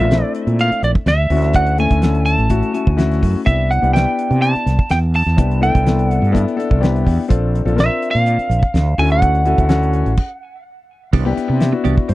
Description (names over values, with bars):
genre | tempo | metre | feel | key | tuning
electric jazz fusion | 125 BPM | 4/4 | straight | C lydian | A4 = 440 Hz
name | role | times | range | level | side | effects
lightly driven lead guitar | melody | 0.0-10.6 s | D5 to A5 | -19 LUFS | right 1 dB | none
warm concert grand piano | accompaniment | 0.0-12.1 s | A3 to G5 | -20 LUFS | left 5 dB | none
fretless electric bass | bass | 0.0-12.1 s | A1 to C3 | -16 LUFS | right 1 dB | none
damped 70s drum kit | drums | 0.0-12.1 s | crash cymbal, hi-hat, kick drum, snare drum | -16 LUFS | equal | none
clean electric guitar | stabs | 11.1-12.1 s | E3 to G4 | -22 LUFS | right 11 dB | analog chorus
room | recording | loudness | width
little or no reverb | dry, close 1970s-style studio recording | -13 LUFS | side -17 dB against mid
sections
0.0-11.1 A section; 11.1-12.1 B section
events
grand piano fill 6.6-7.3; stop 10.2-11.1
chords
0.0 Bbmaj9; 1.3 Dmaj9; 3.5 Cmaj9; 7.3 Bbmaj9; 9.0 Dmaj9; 11.1 Cmaj9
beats
0.11 0.59 1.07 | 1.55 2.03 2.51 2.99 | 3.47 3.94 4.42 4.90 | 5.38 5.86 6.34 6.82 | 7.30 7.78 8.26 8.74 | 9.22 9.70 10.18 10.65 | 11.13 11.61 12.09